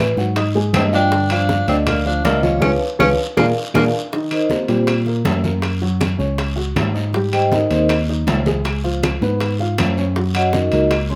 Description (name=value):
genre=Afro-Cuban jazz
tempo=159 BPM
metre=4/4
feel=straight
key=unclear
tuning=A4 = 439 Hz
part: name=vibraphone with soft mallets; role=melody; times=0.0-4.9, 7.3-7.9, 10.3-11.2 s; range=C4 to C6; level=-22 LUFS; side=equal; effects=none
part: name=clear tenor saxophone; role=second line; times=0.0-3.8 s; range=G3 to D4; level=-24 LUFS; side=equal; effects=none
part: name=dark upright piano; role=accompaniment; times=0.0-11.2 s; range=D3 to Eb6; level=-26 LUFS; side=equal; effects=none
part: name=barky tine electric piano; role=bass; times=0.0-11.2 s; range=Db2 to Bb2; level=-22 LUFS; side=equal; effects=none
part: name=claves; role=percussion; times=0.0-11.1 s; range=none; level=-33 LUFS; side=equal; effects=none
part: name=guiro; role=percussion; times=0.0-11.2 s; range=none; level=-37 LUFS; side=equal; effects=none
part: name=bongos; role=percussion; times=0.2-11.2 s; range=none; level=-30 LUFS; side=equal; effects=none
part: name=congas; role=percussion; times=0.2-11.2 s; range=none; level=-28 LUFS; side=equal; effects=none
part: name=timbales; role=percussion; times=0.4-11.1 s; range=none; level=-28 LUFS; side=equal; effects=none
room=light reverb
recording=none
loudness=-18 LUFS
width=mono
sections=0.0-4.1 A section; 4.1-11.2 B section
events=band accent 2.6-4.1; drum fill 3.6-4.1; vibraphone solo 4.1-11.2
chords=0.4 Ab5; 1.1 G5; 2.6 Db7; 3.4 Bb7; 4.1 Eb69; 5.6 Gbadd9; 7.1 Abmaj9; 8.7 Db7; 10.2 Gb6